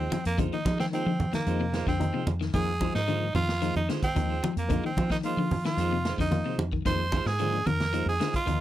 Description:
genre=afrobeat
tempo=111 BPM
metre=4/4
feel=straight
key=F dorian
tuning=A4 = 438 Hz
part: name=raspy tenor saxophone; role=melody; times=0.0-8.6 s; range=Bb3 to C5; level=-31 LUFS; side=right 3 dB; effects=none
part: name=barky reed electric piano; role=accompaniment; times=0.0-8.6 s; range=F3 to F4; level=-34 LUFS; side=left 7 dB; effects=overdrive, medium tremolo
part: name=electric guitar at the edge of break-up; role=arpeggios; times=0.0-8.6 s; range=C3 to F3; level=-34 LUFS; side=left 8 dB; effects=slapback echo
part: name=semi-hollow electric guitar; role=stabs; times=0.0-8.4 s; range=Eb3 to F4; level=-36 LUFS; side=right 7 dB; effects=none
part: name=fingered electric bass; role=bass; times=0.0-8.6 s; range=Eb2 to F3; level=-30 LUFS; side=equal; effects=none
part: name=vintage drum kit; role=drums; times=0.1-8.6 s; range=hi-hat, kick drum, snare drum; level=-33 LUFS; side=equal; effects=none
part: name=congas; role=percussion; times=0.1-8.6 s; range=none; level=-32 LUFS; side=right 2 dB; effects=none
room=little or no reverb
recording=dry, close 1970s-style studio recording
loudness=-25 LUFS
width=side -13 dB against mid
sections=0.0-8.6 A section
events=none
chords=0.0 Fm7

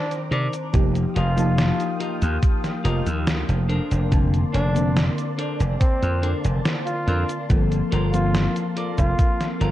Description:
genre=vaporwave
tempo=71 BPM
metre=4/4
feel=straight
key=Bb major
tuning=A4 = 440 Hz
part: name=warm flugelhorn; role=melody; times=0.0-9.5 s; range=C4 to F4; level=-30 LUFS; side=equal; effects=tape echo
part: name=mellow FM electric piano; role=accompaniment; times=0.0-9.7 s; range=D3 to A5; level=-27 LUFS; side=left 2 dB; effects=wide subtle chorus, tape echo
part: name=soft string machine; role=sustained chords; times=0.0-9.7 s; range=Bb3 to Eb6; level=-33 LUFS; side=right 1 dB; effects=phaser, ensemble chorus
part: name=detuned 8-bit digital drum machine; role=drums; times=0.1-9.7 s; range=cabasa, hi-hat, snare drum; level=-28 LUFS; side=equal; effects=gated reverb
part: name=clean electric guitar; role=riff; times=0.3-9.7 s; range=D4 to Eb5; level=-32 LUFS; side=left 1 dB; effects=wide subtle chorus, tape echo
part: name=slap bass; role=bass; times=0.3-9.7 s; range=F1 to C3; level=-21 LUFS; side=equal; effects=tube saturation
part: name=electronic kick drum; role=drums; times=0.7-9.4 s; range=none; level=-20 LUFS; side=equal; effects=none
room=light reverb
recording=cassette tape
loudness=-19 LUFS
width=side -14 dB against mid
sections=0.0-9.7 A section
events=none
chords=0.0 Cm9; 0.7 F9sus4; 3.7 Bbmaj9/F; 7.5 Gm11

